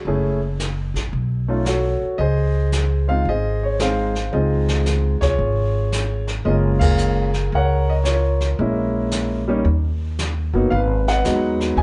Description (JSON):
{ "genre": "jazz piano trio", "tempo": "113 BPM", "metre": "4/4", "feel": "swing 67% on 8ths", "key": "Db major, F# major from 6.5 s", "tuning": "A4 = 441 Hz", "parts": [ { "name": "warm concert grand piano", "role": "melody", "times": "0.1-11.8 s", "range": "F#3 to G#5", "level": "-23 LUFS", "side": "equal", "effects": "plate reverb" }, { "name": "upright bass", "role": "bass", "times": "0.1-11.8 s", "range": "Gb1 to D#2", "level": "-23 LUFS", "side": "equal", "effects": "none" }, { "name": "jazz brush drum kit", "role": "drums", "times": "0.1-11.8 s", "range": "brushed snare drum, crash cymbal, hi-hat, kick drum, snare drum", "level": "-28 LUFS", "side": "equal", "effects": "none" } ], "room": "wet club reverb, RT60 0.8 s", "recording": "heard from further back in the room, nothing above 10.4 kHz", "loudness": "-20 LUFS", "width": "mono", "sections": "0.0-6.5 A section; 6.5-11.8 B section", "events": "band accent 6.7", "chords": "0.1 Gbm7; 1.1 Cb7sus2; 2.2 Dbmaj9; 6.5 F#maj9; 8.6 A#m7b5; 9.7 D#; 10.7 G#m7" }